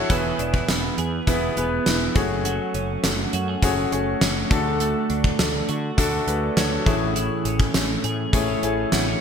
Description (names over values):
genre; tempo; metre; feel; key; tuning
1980s-style pop; 102 BPM; 4/4; straight; unclear; A4 = 440 Hz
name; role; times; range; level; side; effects
clear grand piano; accompaniment; 0.0-9.2 s; A2 to C#5; -25 LUFS; left 4 dB; none
twelve-string electric guitar; riff; 0.1-9.2 s; E3 to G#4; -27 LUFS; right 6 dB; lush chorus, digital delay
fretless electric bass; bass; 0.1-9.1 s; E1 to D3; -28 LUFS; equal; none
gated 80s drum kit; drums; 0.1-9.1 s; hi-hat, kick drum, snare drum; -23 LUFS; equal; gated reverb
room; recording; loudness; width
moderate lush hall reverb, RT60 2.3 s; bright 1980s-style digital production; -20 LUFS; side -7 dB against mid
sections
0.1-9.2 A section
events
none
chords
0.1 E; 2.2 F#madd9; 4.5 D; 6.9 Amaj7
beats
| 0.10 0.69 1.28 1.86 | 2.45 3.04 3.63 4.22 | 4.80 5.39 5.98 6.57 | 7.16 7.75 8.33 8.92